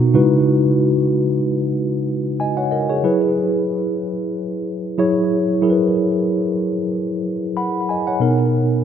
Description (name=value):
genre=R&B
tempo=93 BPM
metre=4/4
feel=swing 57% on 16ths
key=unclear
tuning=A4 = 439 Hz
part: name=mellow tine electric piano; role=solo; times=0.0-8.8 s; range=B2 to B5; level=-16 LUFS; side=equal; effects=medium stereo tremolo, tape echo
room=wet lush hall reverb, RT60 2.7 s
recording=rough home demo mix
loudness=-16 LUFS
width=side -8 dB against mid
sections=0.0-8.8 A section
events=none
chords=0.1 C#m11; 3.0 F#9sus4; 8.2 Bmaj7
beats=| 0.46 1.10 1.75 2.39 | 3.04 3.68 4.33 4.97 | 5.62 6.26 6.91 7.55 | 8.20 8.84